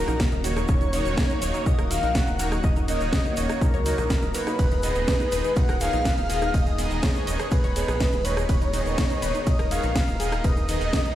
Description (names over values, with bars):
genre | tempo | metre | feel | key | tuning
progressive house | 123 BPM | 4/4 | straight | unclear | A4 = 440 Hz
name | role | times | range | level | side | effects
soft octave-layered synth lead | melody | 0.0-11.2 s | Bb4 to Gb5 | -29 LUFS | left 1 dB | chorus, phaser, vintage 12-bit sampler grit, tape echo
airy dreamy lead | second line | 0.0-11.2 s | Bb4 to Gb5 | -34 LUFS | equal | chorus, sidechain pumping, tape echo
warm analog pad | sustained chords | 0.0-11.2 s | Cb3 to Bb4 | -34 LUFS | left 1 dB | chorus, sidechain pumping
tight sequenced synth | arpeggios | 0.0-11.1 s | Eb4 to Eb5 | -34 LUFS | equal | chorus, sidechain pumping, tape echo
soft supersaw | stabs | 0.0-11.1 s | Eb3 to Eb5 | -31 LUFS | right 3 dB | phaser, sidechain pumping, tape echo
round analog bass | bass | 0.0-10.9 s | Eb1 to Db2 | -28 LUFS | equal | sidechain pumping
house drum kit | drums | 0.1-11.2 s | hi-hat, ride cymbal, rim click, snare drum | -32 LUFS | equal | none
egg shaker | percussion | 0.1-11.2 s | none | -40 LUFS | right 4 dB | none
electronic kick drum | drums | 0.2-11.0 s | none | -23 LUFS | equal | overdrive
room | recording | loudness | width
light reverb | played on a big sound system in a bare room, stone room reverb | -21 LUFS | side -12 dB against mid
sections
0.0-11.2 A section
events
none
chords
0.0 Ebm7; 4.6 Abm/Eb